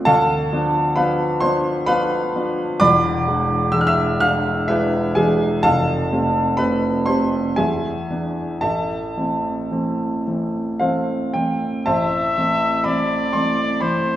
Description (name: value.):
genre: classical, romantic duo for trumpet and grand piano.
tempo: 54-67 BPM.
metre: 3/4.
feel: rubato.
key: A minor.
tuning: A4 = 445 Hz.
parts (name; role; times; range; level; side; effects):
warm grand piano; accompaniment; 0.0-14.2 s; E1 to F6; -18 LUFS; equal; none.
clear trumpet; melody; 11.9-14.2 s; C5 to E5; -20 LUFS; left 2 dB; none.
room: wet recital hall reverb, RT60 1.5 s.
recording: heard from further back in the room.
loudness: -17 LUFS.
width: side -12 dB against mid.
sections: 0.0-11.9 A section; 11.9-14.2 A section.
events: none.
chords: 0.1 Bdim/D; 2.8 E7; 5.6 F; 7.6 E7; 8.6 Am.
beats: | 0.07 0.98 1.88 | 2.82 3.74 4.69 | 5.63 6.59 7.58 | 8.64 9.71 10.81 | 11.86 12.86 13.81.